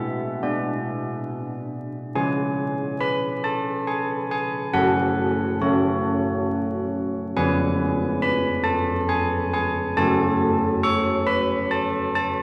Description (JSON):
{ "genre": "classical, tune for church bells", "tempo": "69 BPM", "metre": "3/4", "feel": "straight", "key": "F# minor", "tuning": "A4 = 444 Hz", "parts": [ { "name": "old church bells", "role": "solo", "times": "0.0-12.4 s", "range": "E#3 to C#6", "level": "-23 LUFS", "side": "equal", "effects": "none" } ], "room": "wet cathedral reverb, RT60 5.0 s", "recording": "vinyl crackle", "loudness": "-23 LUFS", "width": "mono", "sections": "0.0-12.4 A section", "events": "none", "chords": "0.0 G#dim/B; 2.2 C#; 4.8 F#m; 7.4 C#7/E#; 10.0 F#m", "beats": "0.42 1.29 | 2.16 3.03 3.90 | 4.76 5.63 6.50 | 7.36 8.22 9.09 | 9.97 10.84 11.71" }